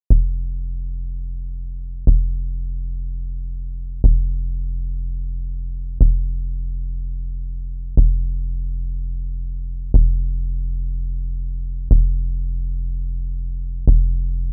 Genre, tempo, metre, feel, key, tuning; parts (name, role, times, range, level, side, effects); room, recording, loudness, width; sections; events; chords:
techno; free time; A4 = 437 Hz
tight sequencer bass; bass; 0.1-14.5 s; F1; -23 LUFS; equal
little or no reverb; nothing above 7.9 kHz; -23 LUFS; mono
0.1-14.5 A section